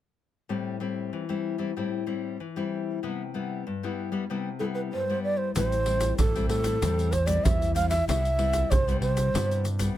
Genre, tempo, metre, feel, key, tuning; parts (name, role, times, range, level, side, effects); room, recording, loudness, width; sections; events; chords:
samba and choro; 95 BPM; 4/4; straight; A minor; A4 = 441 Hz
nylon-string guitar; accompaniment; 0.5-10.0 s; G2 to E4; -30 LUFS; left 6 dB
breathy reedy long shakuhachi; melody; 4.6-9.7 s; A4 to F5; -27 LUFS; right 2 dB
overdriven fingered electric bass; bass; 5.6-9.9 s; A1 to C3; -28 LUFS; right 1 dB
tube shaker, surdo and pandeiro; percussion; 5.6-10.0 s; -28 LUFS; right 1 dB
little or no reverb; close, detailed microphones; -25 LUFS; side -12 dB against mid
0.5-5.6 A section; 5.6-10.0 B section
0.5 Am7; 3.0 Cmaj7; 5.6 Am7; 8.1 Cmaj7